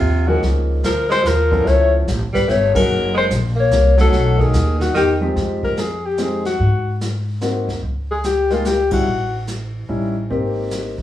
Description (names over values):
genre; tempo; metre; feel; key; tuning
jazz, small-group swing and bop; 146 BPM; 3/4; swing 65% on 8ths; F minor from 5.4 s; A4 = 441 Hz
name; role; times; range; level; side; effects
breathy alto saxophone; melody; 0.0-9.4 s; F4 to Db5; -18 LUFS; left 4 dB; none
clear tenor saxophone; second line; 0.0-5.2 s; C3 to Bb3; -22 LUFS; right 2 dB; none
upright bass; bass; 0.0-11.0 s; Db1 to Ab2; -19 LUFS; equal; none
warm concert grand piano; accompaniment; 0.3-10.9 s; F3 to A4; -22 LUFS; left 1 dB; none
vintage brush drum kit; drums; 0.4-11.0 s; brushed snare drum, crash cymbal, hi-hat, kick drum, ride cymbal, snare drum; -27 LUFS; equal; none
room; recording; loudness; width
moderate studio reverb, RT60 0.8 s; band playing live in one room, studio reverb; -15 LUFS; side -12 dB against mid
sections
0.0-5.4 A section; 5.4-11.0 B section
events
band accent 2.7, 8.9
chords
0.4 Db69; 1.7 Db7alt; 2.9 Gb69; 4.1 B13; 4.9 C; 5.4 Fm9; 6.6 Ab9; 7.8 Dbsus2; 9.1 A7#11; 10.3 Abmaj9